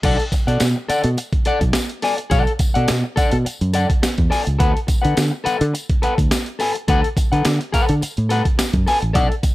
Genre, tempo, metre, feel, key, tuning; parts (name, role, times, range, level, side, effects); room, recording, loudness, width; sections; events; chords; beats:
funk; 105 BPM; 4/4; straight; B dorian; A4 = 440 Hz
electric guitar at the edge of break-up; accompaniment; 0.0-9.5 s; A4 to G#5; -21 LUFS; left 2 dB; lush chorus
fingered electric bass; bass; 0.0-9.5 s; A1 to D3; -19 LUFS; equal
breakbeat sampler-style drum kit; drums; 0.0-9.5 s; crash cymbal, hi-hat, kick drum, snare drum; -19 LUFS; equal
tambourine; percussion; 0.3-9.5 s; -32 LUFS; left 2 dB
little or no reverb; -16 LUFS; side -17 dB against mid
0.0-9.5 A section
0.0 Bm7; 4.6 D6
| 0.03 0.60 1.17 1.75 | 2.32 2.89 3.46 4.03 | 4.60 5.17 5.74 6.31 | 6.88 7.45 8.02 8.59 | 9.16